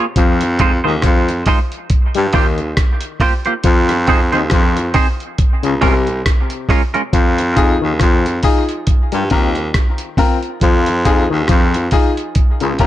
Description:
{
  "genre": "dub reggae",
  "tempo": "69 BPM",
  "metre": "4/4",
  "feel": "swing 56% on 16ths",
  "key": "F minor",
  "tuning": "A4 = 439 Hz",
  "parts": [
    { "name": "twangy electric guitar", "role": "accompaniment", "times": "0.0-7.0 s", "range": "Ab3 to C5", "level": "-19 LUFS", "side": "right 4 dB", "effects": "wide subtle chorus, dub echo" },
    { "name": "overdriven clav", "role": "riff", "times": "0.2-12.9 s", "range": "C3 to G3", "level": "-22 LUFS", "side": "left 8 dB", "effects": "auto-wah, dub echo" },
    { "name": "clear baritone saxophone", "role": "bass", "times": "0.2-12.9 s", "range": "C2 to G2", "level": "-16 LUFS", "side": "equal", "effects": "none" },
    { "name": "dusty soul sampler-style drum kit", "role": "drums", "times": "0.2-12.9 s", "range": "hi-hat, kick drum, rim click", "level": "-15 LUFS", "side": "equal", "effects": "none" },
    { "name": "bright concert grand piano", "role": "stabs", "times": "7.6-12.9 s", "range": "C4 to Bb4", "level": "-19 LUFS", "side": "left 4 dB", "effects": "dub echo" }
  ],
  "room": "light reverb",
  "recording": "none",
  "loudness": "-12 LUFS",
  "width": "side -13 dB against mid",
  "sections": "0.0-12.9 A section",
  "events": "break 0.0-7.1",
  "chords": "0.2 Fm7; 1.9 C7sus4; 3.6 Fm7; 5.4 Db6; 7.1 Fm7; 8.9 C7sus4; 10.6 Fm7; 12.4 Db6"
}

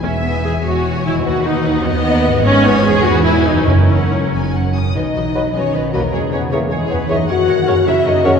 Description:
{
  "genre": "classical, dramatic, fast romantic movement for symphony orchestra",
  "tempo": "92-105 BPM (dotted quarters)",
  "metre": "6/8",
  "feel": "rubato",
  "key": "B major",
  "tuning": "A4 = 440 Hz",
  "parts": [
    { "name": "warm symphonic violin section", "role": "second line", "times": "0.0-8.4 s", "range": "G#4 to F#5", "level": "-23 LUFS", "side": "left 3 dB", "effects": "none" },
    { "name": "rich symphonic viola section", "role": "accompaniment", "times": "0.0-8.3 s", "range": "B3 to C#5", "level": "-18 LUFS", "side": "right 1 dB", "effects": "none" },
    { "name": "concert harp", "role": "arpeggios", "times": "0.0-8.4 s", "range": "E2 to C#5", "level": "-23 LUFS", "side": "left 6 dB", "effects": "none" },
    { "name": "rich symphonic double bass section", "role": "bass", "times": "0.0-8.3 s", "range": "E1 to F#2", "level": "-21 LUFS", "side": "right 3 dB", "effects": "none" },
    { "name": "warm symphonic cello section", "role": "bass", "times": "0.0-8.4 s", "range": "D#2 to F#3", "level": "-21 LUFS", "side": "right 1 dB", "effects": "none" },
    { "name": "dark symphonic violin section", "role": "melody", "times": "0.2-8.3 s", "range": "C#5 to D#6", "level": "-29 LUFS", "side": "left 2 dB", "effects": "none" },
    { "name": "timpani", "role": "percussion", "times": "3.7-4.3 s", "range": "F#2", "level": "-19 LUFS", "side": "equal", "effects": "none" },
    { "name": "clear French horn section", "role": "sustained chords", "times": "5.0-8.4 s", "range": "G#3 to F#4", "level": "-17 LUFS", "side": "left 3 dB", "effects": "none" },
    { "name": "dark clarinet", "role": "second line", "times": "5.4-8.3 s", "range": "F#4 to A#4", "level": "-28 LUFS", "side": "equal", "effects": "none" },
    { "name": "mellow silver concert flute", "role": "second line", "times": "5.4-8.3 s", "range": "D#5 to F#5", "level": "-27 LUFS", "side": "left 2 dB", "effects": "none" },
    { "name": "warm cor anglais", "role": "second line", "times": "5.4-8.3 s", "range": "B4 to C#5", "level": "-29 LUFS", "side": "right 2 dB", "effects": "none" },
    { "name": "dark bassoon", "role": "accompaniment", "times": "5.4-8.3 s", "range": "C#3 to F#3", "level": "-26 LUFS", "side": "right 2 dB", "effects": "none" }
  ],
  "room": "wet church reverb, RT60 3.4 s",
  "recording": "dark, warm production",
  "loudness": "-13 LUFS",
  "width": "side -6 dB against mid",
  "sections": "0.0-5.0 A section; 5.0-8.4 B section",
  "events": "none",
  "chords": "0.0 E; 1.3 B/D#; 2.4 G#m; 3.0 E; 3.7 F#; 5.0 B; 6.1 C#m/E; 7.3 F#"
}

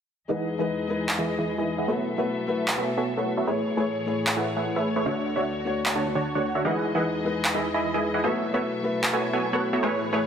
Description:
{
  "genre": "future bass",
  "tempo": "151 BPM",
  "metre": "4/4",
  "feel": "half-time",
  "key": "E major",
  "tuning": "A4 = 443 Hz",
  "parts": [
    { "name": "felt-muted upright piano", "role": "accompaniment", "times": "0.3-10.3 s", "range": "G#3 to C#5", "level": "-28 LUFS", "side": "left 3 dB", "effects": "digital delay" },
    { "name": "rich studio string section", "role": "sustained chords", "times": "0.3-10.3 s", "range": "D2 to E5", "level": "-34 LUFS", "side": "equal", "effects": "low-pass filter" },
    { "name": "supersaw stab", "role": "riff", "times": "0.3-10.2 s", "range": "D3 to B5", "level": "-26 LUFS", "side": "right 2 dB", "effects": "low-pass filter, digital delay" },
    { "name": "electronic handclaps", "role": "drums", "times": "1.1-9.1 s", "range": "none", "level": "-28 LUFS", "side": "equal", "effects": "none" }
  ],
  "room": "moderate lush hall reverb, RT60 2.3 s",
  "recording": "none",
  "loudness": "-23 LUFS",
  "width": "side -8 dB against mid",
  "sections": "0.3-10.3 A section",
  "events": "filter sweep on supersaw synth 0.3-10.3",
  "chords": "0.3 Emaj7; 1.9 B7sus4; 3.5 Amaj7; 5.1 Dmaj7; 6.7 Emaj7; 8.2 B7sus4"
}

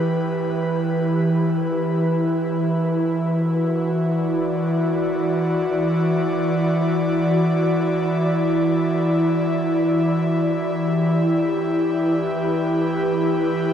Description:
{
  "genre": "ambient",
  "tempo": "free time",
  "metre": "none",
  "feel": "none",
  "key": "unclear",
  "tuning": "A4 = 440 Hz",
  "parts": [
    { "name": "airy breathy pad", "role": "solo", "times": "0.0-13.7 s", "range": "E3 to D5", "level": "-18 LUFS", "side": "equal", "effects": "chorus, diffuse ambient delay" }
  ],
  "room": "wet huge ambient reverb, RT60 7.7 s",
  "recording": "dark, warm production",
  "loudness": "-18 LUFS",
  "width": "side -8 dB against mid",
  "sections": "0.0-13.7 A section",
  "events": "none",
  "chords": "0.0 Em; 2.3 Dadd9/E; 10.4 Em"
}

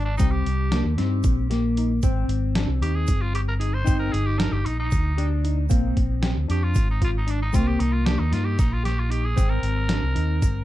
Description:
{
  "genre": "progressive instrumental, band music in an uneven meter",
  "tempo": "229 BPM (eighths)",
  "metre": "7/8",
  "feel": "straight",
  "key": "C minor",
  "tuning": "A4 = 440 Hz",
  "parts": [
    { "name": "raspy tenor saxophone", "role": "melody", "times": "0.0-10.6 s", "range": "D4 to C5", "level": "-31 LUFS", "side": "right 1 dB", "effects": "tape echo" },
    { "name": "tine electric piano", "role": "arpeggios", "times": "0.0-10.4 s", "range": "Bb3 to G4", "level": "-32 LUFS", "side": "right 1 dB", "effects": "medium stereo tremolo" },
    { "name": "fingered electric bass", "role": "bass", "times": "0.0-10.6 s", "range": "G1 to G2", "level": "-23 LUFS", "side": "equal", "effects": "none" },
    { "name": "mellow electric guitar", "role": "second line", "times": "0.2-10.6 s", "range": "G3 to Eb4", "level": "-29 LUFS", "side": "left 4 dB", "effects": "none" },
    { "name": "lo-fi sampler-style drum kit", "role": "drums", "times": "0.2-10.5 s", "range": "hi-hat, kick drum, snare drum", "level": "-24 LUFS", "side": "equal", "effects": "overdrive" },
    { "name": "egg shaker", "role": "percussion", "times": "0.2-10.6 s", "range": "none", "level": "-44 LUFS", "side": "right 6 dB", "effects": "none" }
  ],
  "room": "light reverb",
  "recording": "dark, warm production, faint mains hum",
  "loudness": "-20 LUFS",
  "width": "side -14 dB against mid",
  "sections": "0.0-10.6 A section",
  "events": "tenor saxophone solo 0.0-10.6",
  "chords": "0.2 Cm7; 2.0 Abmaj7; 3.9 Ebmaj7/G; 5.7 Bb7; 7.5 Cm7; 9.4 Abmaj7"
}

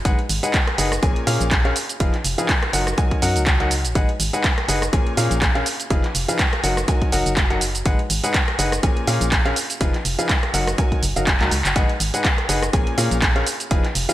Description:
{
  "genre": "piano house",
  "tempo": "123 BPM",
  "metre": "4/4",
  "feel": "swing 56% on 16ths",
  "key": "Eb minor",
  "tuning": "A4 = 437 Hz",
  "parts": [
    { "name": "organ-like FM bass", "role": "bass", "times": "0.0-14.1 s", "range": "F1 to Bb2", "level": "-24 LUFS", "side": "equal", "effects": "sidechain pumping" },
    { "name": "clear upright piano", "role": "riff", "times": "0.1-14.1 s", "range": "Bb2 to Bb5", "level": "-24 LUFS", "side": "left 1 dB", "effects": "sidechain pumping, digital delay" },
    { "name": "electronic kick drum", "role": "drums", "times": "0.1-13.8 s", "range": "none", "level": "-20 LUFS", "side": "equal", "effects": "none" },
    { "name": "punchy analog drum machine", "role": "drums", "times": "0.1-14.1 s", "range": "handclaps, hi-hat, rim click, shaker", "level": "-22 LUFS", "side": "right 1 dB", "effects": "gated reverb" }
  ],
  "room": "light reverb, digital ambience",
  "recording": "bright 1980s-style digital production",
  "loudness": "-17 LUFS",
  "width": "side -14 dB against mid",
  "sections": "0.0-14.1 A section",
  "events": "drum fill 11.4-11.8",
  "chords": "0.1 Abm7; 1.0 Bbm7; 1.8 Fm7b5; 2.7 Ebm/Gb; 4.0 Abm7; 4.9 Bbm7; 5.7 Fm7b5; 6.6 Ebm/Gb; 7.9 Abm7; 8.8 Bbm7; 9.6 Fm7b5; 10.5 Ebm/Gb; 11.8 Abm7; 12.7 Bbm7; 13.5 Fm7b5"
}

